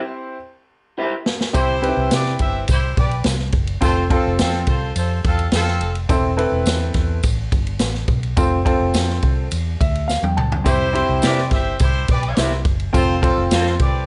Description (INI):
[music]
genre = uptempo 1960s-style soul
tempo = 105 BPM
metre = 4/4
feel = straight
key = C major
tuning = A4 = 440 Hz
[part]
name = clear baby grand piano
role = accompaniment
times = 0.0-14.0 s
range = C4 to A5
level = -24 LUFS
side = equal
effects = none
[part]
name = electric guitar through a small old amp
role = stabs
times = 1.0-1.1, 11.2-13.7 s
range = E4 to F5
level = -25 LUFS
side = equal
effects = subtle chorus
[part]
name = swinging big-band drum kit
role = drums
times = 1.3-13.9 s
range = kick drum, ride cymbal, snare drum, toms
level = -22 LUFS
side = equal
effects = none
[part]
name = warm horn section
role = second line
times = 1.5-5.9, 10.7-14.0 s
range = C4 to E5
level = -26 LUFS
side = equal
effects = none
[part]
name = vintage muted fingered electric bass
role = bass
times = 1.5-14.1 s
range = E1 to C3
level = -24 LUFS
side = equal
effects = none
[part]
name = tambourine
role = percussion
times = 1.5-13.6 s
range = none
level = -36 LUFS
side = equal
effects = none
[sound]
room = light reverb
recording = nothing above 10.8 kHz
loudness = -19 LUFS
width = mono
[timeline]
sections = 0.0-1.5 A section; 1.5-14.1 A section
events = break 0.0-1.5; drum fill 0.4-1.5, 10.1-10.7; grand piano fill 9.5-10.7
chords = 0.0 C; 3.8 F; 6.1 Am/E; 8.4 F; 10.7 C; 12.9 F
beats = 0.40 0.97 | 1.54 2.11 2.68 3.25 | 3.82 4.39 4.96 5.53 | 6.09 6.67 7.24 7.80 | 8.37 8.94 9.52 10.09 | 10.66 11.23 11.80 12.37 | 12.95 13.52